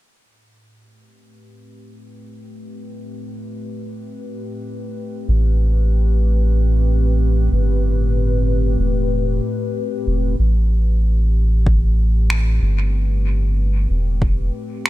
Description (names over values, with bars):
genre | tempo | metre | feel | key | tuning
ambient dub | 94 BPM | 4/4 | swing 55% on 16ths | A minor | A4 = 438 Hz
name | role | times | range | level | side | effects
warbly tape-like pad | sustained chords | 1.4-14.9 s | A2 to B4 | -26 LUFS | left 2 dB | chorus, built-in reverb
soft dub sub bass | bass | 5.3-14.5 s | E1 to A1 | -16 LUFS | equal | none
electronic kick drum | drums | 11.7-14.4 s | none | -19 LUFS | equal | none
electronic finger snaps | drums | 12.3-14.9 s | none | -23 LUFS | equal | dub echo
room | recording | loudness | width
digital ambience | none | -16 LUFS | side -16 dB against mid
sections
0.2-10.4 A section; 10.4-14.9 B section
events
fade-in on ambient pad 0.2-10.4, 10.4-14.9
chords
0.2 Am7